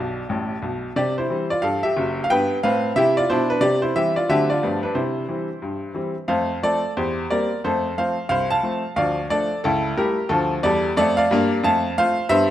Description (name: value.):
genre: jazz, stride piano.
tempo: 180 BPM.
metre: 4/4.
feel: swing 61% on 8ths.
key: C major, F major from 6.3 s.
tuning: A4 = 440 Hz.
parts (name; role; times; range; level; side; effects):
bright baby grand piano; solo; 0.0-12.5 s; F#1 to A5; -19 LUFS; equal; none.
room: light reverb, small room ambience.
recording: rough home demo mix.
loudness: -19 LUFS.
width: side -12 dB against mid.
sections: 0.0-6.3 A section; 6.3-12.5 B section.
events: grand piano fill 0.0-1.0.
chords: 0.0 G; 1.0 C; 2.3 G7; 3.6 C; 4.3 D7; 4.6 G9; 5.0 C; 6.3 F; 7.0 C7/E; 7.6 F; 9.0 Dm; 9.6 A7/C#; 10.3 Dm; 11.6 F.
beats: 0.29 0.62 | 0.95 1.29 1.62 1.95 | 2.29 2.62 2.95 3.29 | 3.62 3.95 4.29 4.62 | 4.96 5.29 5.62 5.96 | 6.29 6.62 6.96 7.29 | 7.63 7.96 8.29 8.63 | 8.96 9.29 9.63 9.96 | 10.30 10.63 10.96 11.30 | 11.63 11.97 12.30.